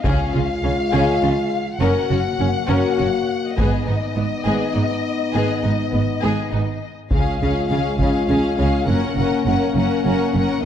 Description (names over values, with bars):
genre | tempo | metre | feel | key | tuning
cinematic, epic orchestral film score | 102 BPM | 3/4 | straight | F# major | A4 = 441 Hz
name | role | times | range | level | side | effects
warm symphonic violin section | melody | 0.0-10.6 s | D#5 to F#5 | -27 LUFS | left 6 dB | none
warm symphonic violin section | second line | 0.0-10.6 s | B3 to A#4 | -27 LUFS | left 4 dB | none
warm symphonic viola section | accompaniment | 0.0-10.6 s | B3 to C#4 | -26 LUFS | right 1 dB | none
mellow French horn section | sustained chords | 0.0-10.6 s | G#3 to F#4 | -23 LUFS | left 3 dB | none
warm symphonic double bass section | bass | 0.0-10.4 s | F#1 to C#2 | -24 LUFS | right 3 dB | none
solo taiko drums | drums | 0.0-8.3 s | none | -23 LUFS | left 1 dB | none
rich symphonic cello section | bass | 0.1-10.4 s | F#2 to C#3 | -24 LUFS | right 2 dB | none
room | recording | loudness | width
moderate scoring stage reverb, RT60 1.7 s | dark, warm production | -17 LUFS | side -9 dB against mid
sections
0.0-7.1 A section; 7.1-10.7 A section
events
none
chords
0.0 C#; 1.8 F#; 3.6 G#m; 7.1 C#; 8.9 F#